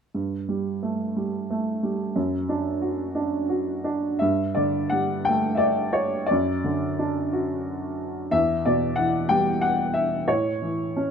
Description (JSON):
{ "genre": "classical, lyrical solo piano", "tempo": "82-93 BPM", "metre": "3/4", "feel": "rubato", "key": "G lydian", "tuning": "A4 = 440 Hz", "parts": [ { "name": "dark upright piano", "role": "solo", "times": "0.1-11.1 s", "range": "E2 to G5", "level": "-22 LUFS", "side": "equal", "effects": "none" } ], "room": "light reverb", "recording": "close, detailed microphones", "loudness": "-22 LUFS", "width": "side -7 dB against mid", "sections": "0.1-4.2 A section; 4.2-11.1 B section", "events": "none", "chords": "0.1 Gsus2; 2.2 D/F#; 4.2 Gsus2; 6.3 D/F#; 8.3 Em; 10.3 A", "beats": "| 0.15 0.83 1.50 | 2.16 2.82 3.49 | 4.20 4.93 5.63 | 6.31 7.00 7.67 | 8.33 8.98 9.63 | 10.30 10.98" }